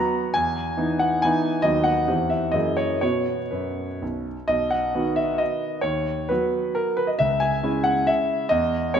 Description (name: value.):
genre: classical, romantic triple-time dance for piano with dotted rhythms.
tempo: 116-148 BPM.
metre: 3/4.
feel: rubato.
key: B major.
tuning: A4 = 438 Hz.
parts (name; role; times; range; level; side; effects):
warm concert grand piano; solo; 0.0-9.0 s; B1 to A#5; -20 LUFS; equal; none.
room: moderate concert hall reverb, RT60 2.2 s.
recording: none.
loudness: -21 LUFS.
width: side -8 dB against mid.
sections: 0.0-4.5 A section; 4.5-9.0 A section.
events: none.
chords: 0.4 Emaj7; 1.7 B/D#; 2.1 C/E; 2.6 F#9; 3.0 B5; 4.5 B; 5.8 B/D#; 7.2 C#m.